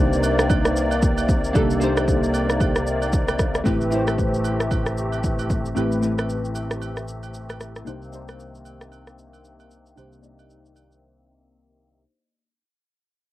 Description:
amapiano; 114 BPM; 4/4; swing 58% on 16ths; A4 = 440 Hz
glassy digital keys; accompaniment; 0.0-12.1 s; A3 to Eb5; -25 LUFS; equal; chorus, tremolo, low-pass filter, cassette tape
musette accordion; sustained chords; 0.0-12.0 s; C3 to D5; -28 LUFS; left 2 dB; sidechain pumping, low-pass filter, cassette tape
fingered electric bass; bass; 0.0-12.0 s; A1 to C2; -27 LUFS; equal
deep house drum kit; drums; 0.1-11.0 s; kick drum, rim click, shaker; -22 LUFS; equal; cassette tape
agogo bells; percussion; 0.2-10.9 s; -36 LUFS; right 10 dB
little or no reverb; home recording on cassette; -19 LUFS; side -15 dB against mid
0.0-12.1 A section
fade-out 0.0-12.1; filter sweep 0.0-12.1; break 11.0-12.1
0.0 Cm9; 3.7 Am9; 7.9 Cm9

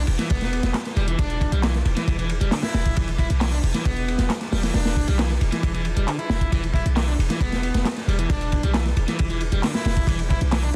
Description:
breakbeat, breaks; 135 BPM; 4/4; straight; E minor pentatonic; A4 = 444 Hz
warm 808-style bass; bass; 0.0-10.7 s; E1 to B1; -25 LUFS; equal; tube saturation
crunchy breakbeat drum kit; drums; 0.1-10.8 s; hi-hat, kick drum, ride cymbal, snare drum; -27 LUFS; equal
crunchy overdriven guitar; riff; 0.2-10.7 s; D3 to E4; -30 LUFS; equal; dub echo
house drum kit; drums; 0.2-10.7 s; handclaps, hi-hat; -36 LUFS; equal
studio ambience; dense, heavily limited modern master, vinyl crackle; -22 LUFS; mono
0.0-10.8 A section
0.0 E7(no3)

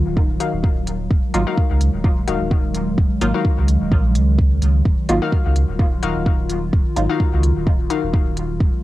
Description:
dub techno; 128 BPM; 4/4; swing 56% on 16ths; Eb minor; A4 = 439 Hz
warbly tape-like pad; sustained chords; 0.0-8.8 s; Eb3 to F4; -25 LUFS; equal; chorus, built-in reverb, sidechain pumping, cassette tape
warm sub bass; bass; 0.0-8.7 s; Eb1 to Db2; -20 LUFS; equal; sidechain pumping
electronic kick drum; drums; 0.2-8.7 s; -18 LUFS; equal; cassette tape
warbly dusty pluck; riff; 0.4-8.0 s; Eb4 to F5; -26 LUFS; left 8 dB; chorus, sidechain pumping, cassette tape, dub echo
electronic hi-hat; drums; 0.4-8.5 s; -31 LUFS; equal; cassette tape
filtered dub chord stab; stabs; 1.3-7.1 s; Gb3 to F4; -24 LUFS; right 1 dB; chorus, phaser, cassette tape, sidechain pumping, dub echo
light reverb; home recording on cassette; -16 LUFS; side -16 dB against mid
0.0-8.8 A section
0.0 Ebmadd9

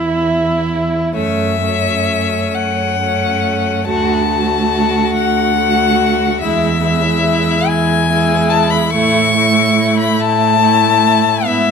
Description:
classical, slow romantic movement for string quartet; 39-49 BPM (dotted quarters); 12/8; rubato; A major; A4 = 441 Hz
rich violin; second line; 0.0-11.7 s; C#4 to F#4; -20 LUFS; left 2 dB
rich viola; accompaniment; 0.0-11.7 s; G#3 to E4; -20 LUFS; right 5 dB
warm cello; bass; 0.0-11.7 s; D2 to A2; -18 LUFS; right 5 dB
rich violin; melody; 1.2-11.7 s; E5 to C#6; -15 LUFS; left 9 dB
light reverb; -12 LUFS; side -6 dB against mid
0.0-11.7 A section
0.0 N.C.; 1.1 F#m; 3.9 D; 6.4 E; 8.9 A

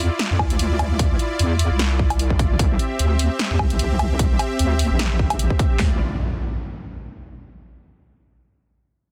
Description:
heavy wobble dubstep; 150 BPM; 4/4; swing 55% on 16ths, half-time; D minor; A4 = 443 Hz
supersaw pad; sustained chords; 0.0-6.0 s; C4 to E5; -29 LUFS; equal; sidechain pumping
wobble bass; bass; 0.0-6.0 s; Bb1 to F2; -22 LUFS; equal; chorus, overdrive
big-room dance drum kit; drums; 0.2-5.7 s; hi-hat, snare drum, woodblock; -27 LUFS; equal
dubstep drum kit; drums; 0.4-5.9 s; handclaps, kick drum, snare drum; -23 LUFS; equal
impact; sound effects; 5.8-7.4 s; -30 LUFS; equal
digital ambience; dense, heavily limited modern master; -20 LUFS; mono
0.0-5.8 A section; 5.8-7.4 B section
filter sweep on wobble bass 0.0-5.8
0.0 Dmadd9; 2.6 C; 5.8 Dmadd9

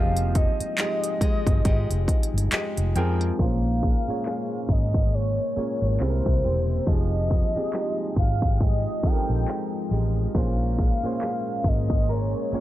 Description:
contemporary R&B; 69 BPM; 4/4; swing 58% on 16ths; Bb dorian; A4 = 441 Hz
warm velvety synth lead; melody; 0.0-12.6 s; C5 to G5; -30 LUFS; equal; chorus, analog delay
warm baby grand piano; accompaniment; 0.0-12.6 s; Bb2 to Ab5; -32 LUFS; right 3 dB
deep dark ambient pad; sustained chords; 0.0-12.6 s; F3 to G5; -34 LUFS; left 2 dB; chorus, built-in reverb
nylon-string guitar; arpeggios; 0.0-12.6 s; C3 to C5; -34 LUFS; left 2 dB
vintage muted fingered electric bass; bass; 0.0-12.6 s; E1 to F2; -24 LUFS; equal
pop drum kit; drums; 0.2-12.6 s; handclaps, hi-hat, kick drum; -24 LUFS; equal
digital ambience; dry, gritty hardware recording, transformer saturation, low-pass filter; -21 LUFS; side -14 dB against mid
0.0-3.4 A section; 3.4-12.6 B section
grand piano fill 2.1-3.4
0.0 Fm9; 3.4 Bbm9; 6.0 C7; 6.9 Fm9; 10.3 Bbm9

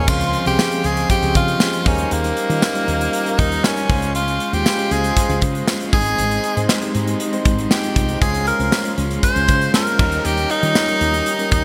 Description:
1980s-style pop; 118 BPM; 4/4; straight; A4 = 440 Hz
edgy tenor saxophone; melody; 0.0-11.6 s; Bb3 to C5; -23 LUFS; equal; digital delay
bell-like tine electric piano; accompaniment; 0.0-11.6 s; F3 to Db5; -26 LUFS; equal
pedal harmonium; sustained chords; 0.0-11.6 s; Ab3 to C6; -30 LUFS; equal
heavy high-gain guitar; accompaniment; 0.1-11.6 s; Ab2 to Eb4; -35 LUFS; equal
woody fretless electric bass; bass; 0.1-11.6 s; Ab1 to Eb3; -25 LUFS; equal
modern studio drum kit; drums; 0.1-11.6 s; crash cymbal, hi-hat, kick drum, snare drum, tambourine; -22 LUFS; equal
moderate lush hall reverb, RT60 2.6 s; bright 1980s-style digital production; -18 LUFS; mono
0.1-11.6 A section
0.1 Dbmaj7; 1.9 Eb7; 3.9 Dbmaj7; 5.9 Ab; 8.2 Dbmaj7; 10.0 Eb7

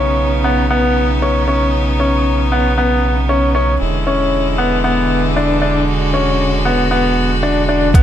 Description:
piano and strings electronica; 116 BPM; 4/4; straight; A4 = 439 Hz
bright string quartet; sustained chords; 0.0-8.0 s; C#3 to F#4; -19 LUFS; equal; sidechain pumping
bright upright piano; riff; 0.0-8.0 s; B3 to D4; -16 LUFS; left 1 dB; low-pass filter, digital delay
round analog bass; bass; 0.0-8.0 s; E1 to B1; -18 LUFS; right 1 dB; sidechain pumping
electronic hi-hat; drums; 7.9-8.0 s; -28 LUFS; equal
electronic kick drum; drums; 7.9-8.0 s; -6 LUFS; equal
moderate lush hall reverb, RT60 2.2 s; -13 LUFS; side -10 dB against mid
0.0-7.9 A section
0.0 Badd9; 3.8 E7

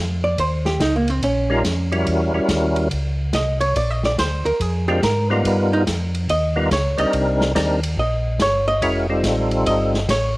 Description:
soul jazz organ trio; 142 BPM; 4/4; swing 65% on 8ths; A4 = 441 Hz
archtop guitar, miked and amplified; accompaniment; 0.0-10.4 s; Bb3 to F5; -21 LUFS; right 1 dB; cassette tape
mellow tonewheel organ; bass; 0.0-10.4 s; F1 to Ab2; -22 LUFS; equal; chorus vibrato, slow rotary speaker
vintage drum kit; drums; 0.4-10.2 s; hi-hat, kick drum, ride cymbal, snare drum; -26 LUFS; equal; cassette tape
percussive tonewheel organ; melody; 1.5-10.0 s; G3 to Bb4; -21 LUFS; equal; slow rotary speaker, chorus vibrato, cassette tape
moderate spring reverb, RT60 1.9 s, small room reverb; home recording on cassette; -17 LUFS; side -20 dB against mid
0.0-10.4 A section
hollow-body jazz guitar solo 0.0-10.4
0.4 Eb9; 2.1 Edim7; 3.8 Bb9; 5.4 G7alt; 7.1 Cm7; 8.8 F9

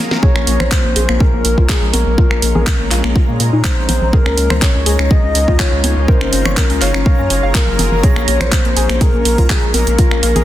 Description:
progressive house; 123 BPM; 4/4; straight; Bb minor; A4 = 440 Hz
shimmering ambient pad; sustained chords; 0.0-10.4 s; Db3 to Bb4; -24 LUFS; equal; chorus, built-in reverb, sidechain pumping
soft round pluck; arpeggios; 0.0-10.4 s; Bb3 to F5; -22 LUFS; left 3 dB; chorus, sidechain pumping, dub echo
backwards swelling texture; texture; 0.0-10.4 s; Bb5; -30 LUFS; right 1 dB; built-in reverb, sidechain pumping
house drum kit; drums; 0.1-10.4 s; finger snaps, handclaps, hi-hat, snare drum; -19 LUFS; right 1 dB; sidechain pumping on hats, soft clipping on snare
congas; percussion; 0.1-10.4 s; -20 LUFS; equal; sidechain pumping on perc
soft octave-layered synth lead; melody; 0.2-10.4 s; Ab4 to Eb5; -20 LUFS; left 2 dB; chorus, sidechain pumping, digital delay
electronic kick drum; drums; 0.2-10.1 s; -13 LUFS; equal
round analog bass; bass; 0.4-10.4 s; Gb1 to Bb2; -16 LUFS; equal; sidechain pumping
light reverb, digital ambience; dense, heavily limited modern master; -11 LUFS; side -13 dB against mid
0.0-10.4 A section
break 0.0; drum fill 0.0
0.2 Bbm7; 4.1 Db6; 6.1 Gbmaj7; 8.0 Bbm7

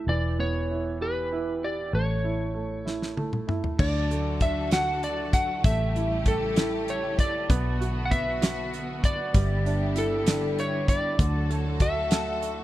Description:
six-eight pop ballad; 65 BPM (dotted quarters); 6/8; straight; D major; A4 = 440 Hz
electric slide guitar; melody; 0.0-12.6 s; A4 to F#5; -29 LUFS; left 1 dB
warm upright piano; accompaniment; 0.0-12.6 s; D3 to A4; -32 LUFS; right 4 dB
vintage muted fingered electric bass; bass; 0.0-12.6 s; E1 to D2; -29 LUFS; equal
damped 70s drum kit; drums; 2.9-12.6 s; crash cymbal, hi-hat, kick drum, snare drum, toms; -25 LUFS; equal
warm studio string section; sustained chords; 3.8-12.6 s; C#3 to A4; -33 LUFS; left 2 dB
small room ambience; -24 LUFS; side -15 dB against mid
0.0-3.8 A section; 3.8-12.6 B section
drum fill 2.9-3.8
0.1 Em; 1.9 A; 3.8 D; 5.6 A7; 7.5 Bm7; 9.3 G6; 11.2 D

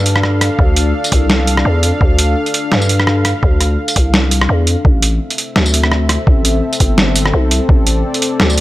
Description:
half-time drum and bass; 169 BPM; 4/4; swing 56% on 16ths, half-time; A4 = 440 Hz
dark analog pad; sustained chords; 0.0-8.6 s; C4 to F5; -19 LUFS; left 2 dB; chorus, vintage 12-bit sampler grit, sidechain pumping
growling 808-style bass; bass; 0.0-8.6 s; G1 to G2; -14 LUFS; equal; tube saturation
boom bap sampler-style drum kit; drums; 0.1-8.6 s; hi-hat, rim click, snare drum, tambourine; -15 LUFS; right 1 dB
electronic kick drum; drums; 0.6-7.8 s; -12 LUFS; equal
little or no reverb; -11 LUFS; side -16 dB against mid
0.0-8.6 A section
kick drops out 4.1-4.8
0.0 Dm; 4.8 Am

